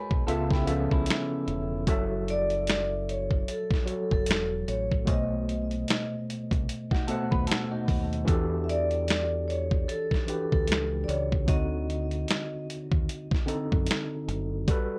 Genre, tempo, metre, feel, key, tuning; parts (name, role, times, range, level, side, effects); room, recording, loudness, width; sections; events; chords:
lo-fi hip hop; 75 BPM; 4/4; swing 60% on 16ths; D major; A4 = 442 Hz
electric guitar through a small old amp; second line; 0.0-1.8, 6.9-8.2 s; C#4 to B4; -38 LUFS; equal; tape echo
tine electric piano; accompaniment; 0.0-15.0 s; B2 to F#5; -35 LUFS; equal; overdrive, cassette tape
deep dub fingered electric bass; bass; 0.1-14.6 s; E1 to F#2; -34 LUFS; equal
dusty soul sampler-style drum kit; drums; 0.1-14.9 s; finger snaps, hi-hat, kick drum, snare drum; -29 LUFS; equal
vibraphone with soft mallets; melody; 2.3-12.6 s; A4 to E5; -34 LUFS; equal; tape echo
light reverb; cassette tape; -28 LUFS; mono
0.0-15.0 A section
0.3 C#7alt; 1.9 F#m7; 5.1 B7b9; 8.3 Em11; 11.5 D7b9